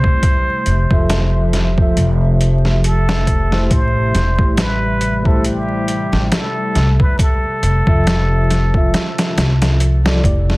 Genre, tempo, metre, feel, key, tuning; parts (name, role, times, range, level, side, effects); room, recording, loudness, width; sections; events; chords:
trip hop; 69 BPM; 4/4; swing 56% on 16ths; A4 = 440 Hz
trumpet with plunger mute; melody; 0.0-9.8 s; G4 to C5; -22 LUFS; equal; dub echo
mellow reed electric piano; accompaniment; 0.0-10.6 s; F3 to E5; -22 LUFS; equal; tremolo, tape echo
warbly tape-like pad; sustained chords; 0.0-10.6 s; C3 to E5; -25 LUFS; equal; chorus, built-in reverb
trip hop sampler-style drum kit; drums; 0.0-10.6 s; hi-hat, kick drum, snare drum; -17 LUFS; equal; overdrive, small room ambience
upright bass; bass; 0.7-10.6 s; E1 to C2; -16 LUFS; equal; tube saturation
digital ambience; dense, heavily limited modern master, vinyl crackle; -13 LUFS; side -21 dB against mid
0.0-10.6 A section
0.2 Fmaj7; 3.7 Am7; 7.2 Fmaj7